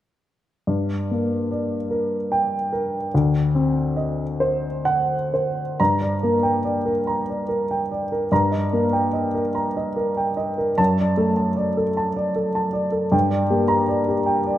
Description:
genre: classical, romantic character piece for solo piano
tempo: 40-53 BPM (dotted quarters)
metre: 6/8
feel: rubato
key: G minor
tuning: A4 = 444 Hz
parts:
  - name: warm baby grand piano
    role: solo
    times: 0.7-14.6 s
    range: D2 to Bb5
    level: -19 LUFS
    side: equal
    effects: none
room: moderate recital hall reverb, RT60 1.8 s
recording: none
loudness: -19 LUFS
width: side -12 dB against mid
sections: 0.7-5.8 A section; 5.8-14.6 B section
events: none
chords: 0.7 Gm; 3.1 D7b9; 5.8 Gm; 8.3 Eb/G; 10.8 D/F#; 13.1 Gm

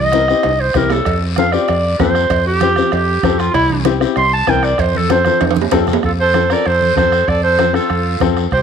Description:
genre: latin, cumbia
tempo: 193 BPM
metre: 4/4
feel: straight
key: F major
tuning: A4 = 440 Hz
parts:
  - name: clear clarinet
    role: melody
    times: 0.0-8.6 s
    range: E4 to C6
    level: -16 LUFS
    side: right 1 dB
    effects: none
  - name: fingered electric bass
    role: bass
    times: 0.0-8.6 s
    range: C2 to F2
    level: -19 LUFS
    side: equal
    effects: none
  - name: dark upright piano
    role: accompaniment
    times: 0.1-8.4 s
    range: C4 to Bb4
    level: -18 LUFS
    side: left 11 dB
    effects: none
  - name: bombo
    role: percussion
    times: 0.1-8.6 s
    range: none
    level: -25 LUFS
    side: right 5 dB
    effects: none
  - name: congas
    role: percussion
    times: 0.1-8.4 s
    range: none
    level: -25 LUFS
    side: right 11 dB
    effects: none
  - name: guiro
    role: percussion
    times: 0.1-8.6 s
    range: none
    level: -31 LUFS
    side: left 12 dB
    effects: none
  - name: cowbell and timbales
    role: percussion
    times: 0.4-6.0 s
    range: none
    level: -22 LUFS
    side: right 13 dB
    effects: none
  - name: accordion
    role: second line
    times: 6.1-8.6 s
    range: F4 to Bb4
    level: -25 LUFS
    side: right 10 dB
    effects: none
room: light reverb, small room ambience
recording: 1960s-style stereo with parts hard left and right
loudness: -12 LUFS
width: side -7 dB against mid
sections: 0.0-6.0 A section; 6.0-8.6 B section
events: clarinet solo 0.0-6.0; drum fill 0.4-1.1, 5.3-6.0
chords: 0.0 C; 1.1 F; 3.5 C; 4.8 F

